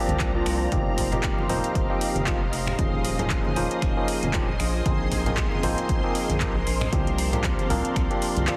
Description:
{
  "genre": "deep house",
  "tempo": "116 BPM",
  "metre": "4/4",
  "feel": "swing 56% on 16ths",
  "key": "F minor",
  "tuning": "A4 = 440 Hz",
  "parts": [
    { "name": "soft string machine", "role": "sustained chords", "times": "0.0-8.6 s", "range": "F4 to Eb6", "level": "-36 LUFS", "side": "equal", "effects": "ensemble chorus, vintage 12-bit sampler grit, sidechain pumping" },
    { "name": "barky tine electric piano", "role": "stabs", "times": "0.0-8.6 s", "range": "F3 to C5", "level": "-30 LUFS", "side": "equal", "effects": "sidechain pumping, dub echo" },
    { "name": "ethereal airy pad", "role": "texture", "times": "0.2-8.6 s", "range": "C4 to Bb5", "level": "-39 LUFS", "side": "equal", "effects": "none" },
    { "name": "round analog bass", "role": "bass", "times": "0.1-8.5 s", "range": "Eb1 to C2", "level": "-31 LUFS", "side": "equal", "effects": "sidechain pumping" },
    { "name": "deep house drum kit", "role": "drums", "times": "0.1-8.6 s", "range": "finger snaps, handclaps, hi-hat", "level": "-34 LUFS", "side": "equal", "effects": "overdrive" },
    { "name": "congas", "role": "percussion", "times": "0.1-8.5 s", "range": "none", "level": "-35 LUFS", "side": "equal", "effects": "sidechain pumping on perc" },
    { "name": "electronic kick drum", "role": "drums", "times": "0.2-8.1 s", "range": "none", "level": "-30 LUFS", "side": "equal", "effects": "none" },
    { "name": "analog string pad", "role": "texture", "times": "0.7-8.6 s", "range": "C5 to C6", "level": "-40 LUFS", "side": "equal", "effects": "ensemble chorus, phaser" }
  ],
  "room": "light reverb",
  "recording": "heavily compressed radio sound, multiband compression",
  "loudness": "-25 LUFS",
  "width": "mono",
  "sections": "0.0-8.6 A section",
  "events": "none",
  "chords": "0.0 C9sus4; 0.7 F9sus4; 2.8 Eb9sus4; 4.6 Bb9sus4; 6.9 C9sus4"
}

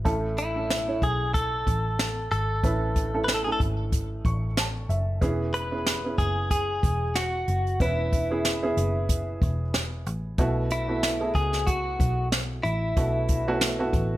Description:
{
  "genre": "piano-driven pop",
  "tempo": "93 BPM",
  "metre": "4/4",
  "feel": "swing 56% on 16ths",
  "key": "E major",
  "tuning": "A4 = 440 Hz",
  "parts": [
    { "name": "dark upright piano", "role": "accompaniment", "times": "0.0-14.2 s", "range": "A2 to C#6", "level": "-30 LUFS", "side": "right 2 dB", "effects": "plate reverb" },
    { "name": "vintage muted picked electric bass", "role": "bass", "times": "0.0-14.2 s", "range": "E1 to C#2", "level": "-29 LUFS", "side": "equal", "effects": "none" },
    { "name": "jazz brush drum kit", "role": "drums", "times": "0.1-14.1 s", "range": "hi-hat, kick drum, snare drum", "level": "-26 LUFS", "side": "equal", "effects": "none" },
    { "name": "direct-recorded clean electric guitar", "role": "melody", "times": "0.4-13.6 s", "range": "E4 to B4", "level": "-28 LUFS", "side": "equal", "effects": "plate reverb" }
  ],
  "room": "moderate studio reverb, RT60 0.6 s",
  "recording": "none",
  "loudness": "-23 LUFS",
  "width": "side -15 dB against mid",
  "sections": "0.0-14.2 A section",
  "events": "upright piano fill 3.9-5.2",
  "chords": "0.1 A; 5.2 E6; 10.4 B7sus4"
}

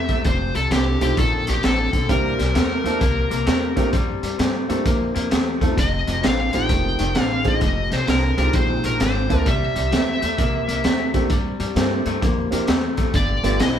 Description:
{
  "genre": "electric blues shuffle",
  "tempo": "130 BPM",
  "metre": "4/4",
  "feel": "swing 65% on 8ths",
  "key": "C mixolydian",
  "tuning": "A4 = 438 Hz",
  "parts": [
    { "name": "smooth overdriven lead guitar", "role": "melody", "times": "0.0-13.8 s", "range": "G4 to G5", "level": "-24 LUFS", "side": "left 1 dB", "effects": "none" },
    { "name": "electric guitar through a small old amp", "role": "riff", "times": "0.0-13.8 s", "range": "F2 to Bb3", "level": "-26 LUFS", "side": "left 4 dB", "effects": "none" },
    { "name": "upright bass", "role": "bass", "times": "0.0-13.8 s", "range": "F1 to G2", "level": "-24 LUFS", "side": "equal", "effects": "none" },
    { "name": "crunchy breakbeat drum kit", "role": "drums", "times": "0.1-13.7 s", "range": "hi-hat, kick drum, snare drum", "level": "-22 LUFS", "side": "equal", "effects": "none" },
    { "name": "warm upright piano", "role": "accompaniment", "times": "1.0-13.6 s", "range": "Ab3 to A4", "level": "-26 LUFS", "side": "right 2 dB", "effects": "none" }
  ],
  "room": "light reverb",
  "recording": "band playing live in one room",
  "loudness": "-18 LUFS",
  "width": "side -9 dB against mid",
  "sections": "0.0-13.8 A section",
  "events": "none",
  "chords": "0.3 F9; 2.1 C9; 5.8 F9; 7.6 Fm7; 9.5 C9; 13.1 G9"
}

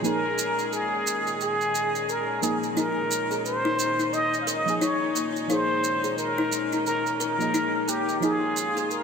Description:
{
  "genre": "organic downtempo",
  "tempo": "88 BPM",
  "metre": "4/4",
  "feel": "swing 59% on 16ths",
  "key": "unclear",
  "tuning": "A4 = 442 Hz",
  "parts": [
    { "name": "deep mellow chord stab", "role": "accompaniment", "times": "0.0-9.0 s", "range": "F3 to Ab4", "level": "-32 LUFS", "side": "right 2 dB", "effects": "chorus, digital delay" },
    { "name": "warm studio string section", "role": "sustained chords", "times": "0.0-9.0 s", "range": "Bb2 to Ab4", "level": "-33 LUFS", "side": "left 1 dB", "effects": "none" },
    { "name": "shaker", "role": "drums", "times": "0.0-9.0 s", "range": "none", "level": "-33 LUFS", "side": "right 6 dB", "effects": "none" },
    { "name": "bronze singing bowl", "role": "texture", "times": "0.0-9.0 s", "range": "Db4", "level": "-50 LUFS", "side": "left 2 dB", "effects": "none" },
    { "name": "trumpet with plunger mute", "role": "melody", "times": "0.1-9.0 s", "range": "G4 to F5", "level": "-26 LUFS", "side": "equal", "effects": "digital delay" },
    { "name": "kalimba", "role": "arpeggios", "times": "2.8-9.0 s", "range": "Bb3 to Bb4", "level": "-29 LUFS", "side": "left 4 dB", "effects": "digital delay" }
  ],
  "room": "wet lush hall reverb, RT60 2.5 s",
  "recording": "bright 1980s-style digital production",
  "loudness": "-23 LUFS",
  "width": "side -6 dB against mid",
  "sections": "0.0-9.0 A section",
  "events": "none",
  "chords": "0.0 Eb7sus4"
}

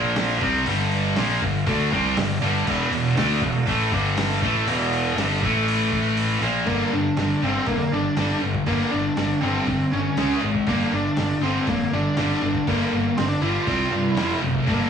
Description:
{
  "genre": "hard rock",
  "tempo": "120 BPM",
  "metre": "4/4",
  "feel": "straight",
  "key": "G dorian",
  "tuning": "A4 = 440 Hz",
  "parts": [
    { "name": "scooped high-gain guitar", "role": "riff", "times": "0.0-14.9 s", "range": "E2 to D4", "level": "-26 LUFS", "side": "left 6 dB", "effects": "distortion" },
    { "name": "scooped high-gain guitar", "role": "riff", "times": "0.0-14.9 s", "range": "E2 to D4", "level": "-25 LUFS", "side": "right 4 dB", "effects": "distortion" },
    { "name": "fuzz fingered electric bass", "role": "bass", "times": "0.0-14.8 s", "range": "E1 to G2", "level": "-26 LUFS", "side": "equal", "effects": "overdrive" },
    { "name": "dusty soul sampler-style drum kit", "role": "drums", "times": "0.2-14.8 s", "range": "crash cymbal, hi-hat, kick drum, snare drum", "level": "-31 LUFS", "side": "equal", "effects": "none" },
    { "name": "bluesy overdriven lead guitar", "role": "melody", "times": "6.7-14.9 s", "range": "Bb3 to F4", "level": "-24 LUFS", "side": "equal", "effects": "distortion" }
  ],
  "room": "moderate studio ambience, RT60 0.5 s",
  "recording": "rough rehearsal-room recording, studio reverb",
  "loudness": "-20 LUFS",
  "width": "side -7 dB against mid",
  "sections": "0.0-6.7 A section; 6.7-14.9 B section",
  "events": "kick and snare drop out 6.2-6.7",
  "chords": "0.4 Gm; 2.7 E5; 3.9 G5; 4.4 E5; 5.4 A5; 6.4 Bb5; 6.7 G5; 10.2 C#5; 10.7 Gm; 13.7 C5; 14.2 F5"
}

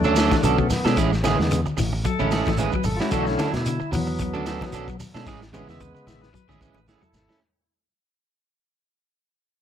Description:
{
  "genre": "afrobeat",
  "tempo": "112 BPM",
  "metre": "4/4",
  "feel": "swing 55% on 16ths",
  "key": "unclear",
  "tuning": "A4 = 440 Hz",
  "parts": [
    { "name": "bright tonewheel organ", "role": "accompaniment", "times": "0.0-7.4 s", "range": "C#3 to E5", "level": "-27 LUFS", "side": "left 1 dB", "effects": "overdrive, slow rotary speaker" },
    { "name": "electric guitar at the edge of break-up", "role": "arpeggios", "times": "0.0-7.3 s", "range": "D3 to G#3", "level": "-30 LUFS", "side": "left 8 dB", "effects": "none" },
    { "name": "electric guitar at the edge of break-up", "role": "stabs", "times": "0.0-7.4 s", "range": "F#3 to A4", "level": "-26 LUFS", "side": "right 8 dB", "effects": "none" },
    { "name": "fingered electric bass", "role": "bass", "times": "0.0-7.3 s", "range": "G#1 to B2", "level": "-27 LUFS", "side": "equal", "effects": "none" },
    { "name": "congas", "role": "percussion", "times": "0.0-7.3 s", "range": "none", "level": "-31 LUFS", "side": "equal", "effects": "none" },
    { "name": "shekere", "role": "percussion", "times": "0.0-7.4 s", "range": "none", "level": "-34 LUFS", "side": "right 2 dB", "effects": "none" },
    { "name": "crunchy breakbeat drum kit", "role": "drums", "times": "0.2-7.4 s", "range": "hi-hat, kick drum, snare drum, toms", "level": "-28 LUFS", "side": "equal", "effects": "none" }
  ],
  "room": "small room ambience",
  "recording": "none",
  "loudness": "-20 LUFS",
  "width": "side -9 dB against mid",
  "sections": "0.0-7.4 A section",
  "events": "fade-out 0.0-7.4; tonewheel organ solo 0.0-7.4; drum fill 5.3-7.4",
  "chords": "0.0 Bm9; 1.0 Amaj7; 3.1 Bm9; 5.3 Amaj7"
}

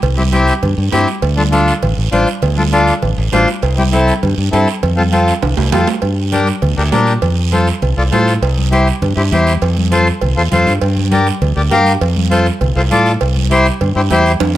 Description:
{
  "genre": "latin, cumbia",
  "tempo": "200 BPM",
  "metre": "4/4",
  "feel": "straight",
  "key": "F major",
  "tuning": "A4 = 438 Hz",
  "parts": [
    { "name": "modern bright fingered electric bass", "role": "bass", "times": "0.0-14.6 s", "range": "A1 to Bb2", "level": "-15 LUFS", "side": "equal", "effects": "none" },
    { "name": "congas", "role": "percussion", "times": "0.0-14.5 s", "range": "none", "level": "-21 LUFS", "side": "equal", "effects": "none" },
    { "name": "cowbell and timbales", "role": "percussion", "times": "0.0-14.6 s", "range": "none", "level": "-22 LUFS", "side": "right 7 dB", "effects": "none" },
    { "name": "guiro", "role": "percussion", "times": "0.0-14.6 s", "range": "none", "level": "-27 LUFS", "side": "right 9 dB", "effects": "none" },
    { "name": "accordion", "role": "accompaniment", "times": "0.2-14.3 s", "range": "C4 to F5", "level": "-15 LUFS", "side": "left 2 dB", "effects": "none" }
  ],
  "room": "light reverb",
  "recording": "none",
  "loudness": "-11 LUFS",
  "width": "side -14 dB against mid",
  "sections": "0.0-6.0 A section; 6.0-14.6 B section",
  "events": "drum fill 5.4-6.0, 14.4",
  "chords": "0.0 C; 1.2 Dm; 3.6 C; 4.8 F; 6.0 Gm; 7.2 F; 8.4 C; 9.6 F; 10.8 Gm; 12.0 F; 13.2 C"
}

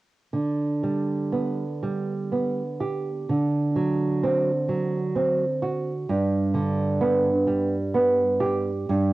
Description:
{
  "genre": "classical",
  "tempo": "63 BPM",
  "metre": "3/4",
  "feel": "uneven beats, rubato",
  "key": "G major",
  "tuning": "A4 = 440 Hz",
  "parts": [
    { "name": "nylon-string guitar", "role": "accompaniment", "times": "0.3-9.1 s", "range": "G2 to G4", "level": "-22 LUFS", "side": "right 2 dB", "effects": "cassette tape" }
  ],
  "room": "wet studio reverb, RT60 0.6 s",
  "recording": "home recording on cassette",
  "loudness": "-22 LUFS",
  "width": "side -17 dB against mid",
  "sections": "0.3-9.1 A section",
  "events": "none",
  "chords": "0.3 G/D; 3.3 D7; 6.1 G"
}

